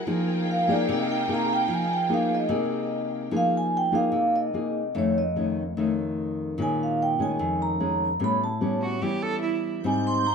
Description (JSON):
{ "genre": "bossa nova", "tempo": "147 BPM", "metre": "4/4", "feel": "straight", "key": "F minor", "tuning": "A4 = 440 Hz", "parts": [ { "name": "nylon-string guitar", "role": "accompaniment", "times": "0.0-10.3 s", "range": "F2 to Ab4", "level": "-26 LUFS", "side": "left 2 dB", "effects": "none" }, { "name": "dark studio string section", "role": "sustained chords", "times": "0.0-3.3, 9.8-10.3 s", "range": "C4 to G6", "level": "-33 LUFS", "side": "equal", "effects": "none" }, { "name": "vibraphone with soft mallets", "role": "melody", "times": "0.5-10.3 s", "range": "C#5 to C6", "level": "-26 LUFS", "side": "right 2 dB", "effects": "none" }, { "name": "warm cello", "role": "second line", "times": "8.8-9.7 s", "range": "E4 to A4", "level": "-29 LUFS", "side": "right 7 dB", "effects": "none" } ], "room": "light reverb", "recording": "minimal, uncompressed stereo recording", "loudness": "-23 LUFS", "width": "side -6 dB against mid", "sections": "0.0-3.3 A section; 3.3-10.3 B section", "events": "vibraphone solo 0.0-3.3", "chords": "0.1 Fm11; 3.3 Fm7; 4.9 Faug7; 6.6 Bbm7; 8.2 A9; 9.8 Abmaj7" }